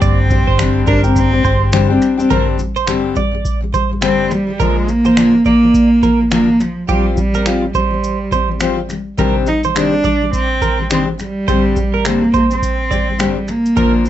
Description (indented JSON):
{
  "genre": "acoustic pop",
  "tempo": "105 BPM",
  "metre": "4/4",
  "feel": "swing 60% on 16ths",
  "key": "unclear",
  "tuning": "A4 = 441 Hz",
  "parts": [
    { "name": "dark cello", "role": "melody", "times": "0.0-14.1 s", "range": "F3 to Eb4", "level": "-15 LUFS", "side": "right 1 dB", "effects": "none" },
    { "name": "picked steel-string acoustic guitar", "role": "accompaniment", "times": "0.0-14.1 s", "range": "G2 to Bb4", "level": "-18 LUFS", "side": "left 5 dB", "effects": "none" },
    { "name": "twelve-string electric guitar", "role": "arpeggios", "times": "0.0-13.9 s", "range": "G4 to D5", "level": "-20 LUFS", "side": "right 8 dB", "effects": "none" },
    { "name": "vintage muted fingered electric bass", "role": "bass", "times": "0.0-2.0 s", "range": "G1", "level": "-15 LUFS", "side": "equal", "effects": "none" },
    { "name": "booming analog drum machine", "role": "drums", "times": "0.0-14.1 s", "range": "finger snaps, kick drum, shaker", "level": "-19 LUFS", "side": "right 1 dB", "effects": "none" }
  ],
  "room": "wet small room reverb, RT60 0.6 s",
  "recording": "nothing above 8.0 kHz",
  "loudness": "-12 LUFS",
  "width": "side -12 dB against mid",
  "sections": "0.0-2.3 A section; 2.3-4.6 B section; 4.6-14.1 C section",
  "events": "none",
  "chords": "0.0 Gsus4; 4.6 Bb; 6.9 Fsus2; 8.9 Cmadd9; 11.2 Gsus4"
}